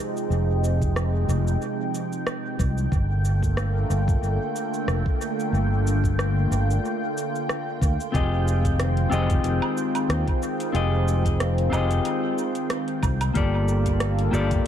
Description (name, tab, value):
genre	sunset chillout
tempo	92 BPM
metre	4/4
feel	swing 55% on 16ths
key	F dorian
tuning	A4 = 438 Hz
part	lush unison pad	sustained chords	0.0-14.7 s	C3 to G5	-28 LUFS	equal	chorus, phaser
part	smooth R&B drum kit	drums	0.2-14.6 s	cabasa, hi-hat, rim click, woodblock	-33 LUFS	right 1 dB	dub echo
part	fretless electric bass	bass	0.3-14.6 s	F1 to Eb2	-22 LUFS	equal	none
part	electronic kick drum	drums	0.8-14.6 s	none	-24 LUFS	equal	none
part	clean electric guitar	accompaniment	8.1-14.7 s	Bb3 to Eb5	-27 LUFS	moving between left 6 dB and right 1 dB	auto-pan, tape echo
room	light reverb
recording	echo-heavy mix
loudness	-21 LUFS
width	side -10 dB against mid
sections	0.0-14.7 A section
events	none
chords	0.0 Fm9; 2.9 Gm9; 8.1 Fm9; 13.4 Gm9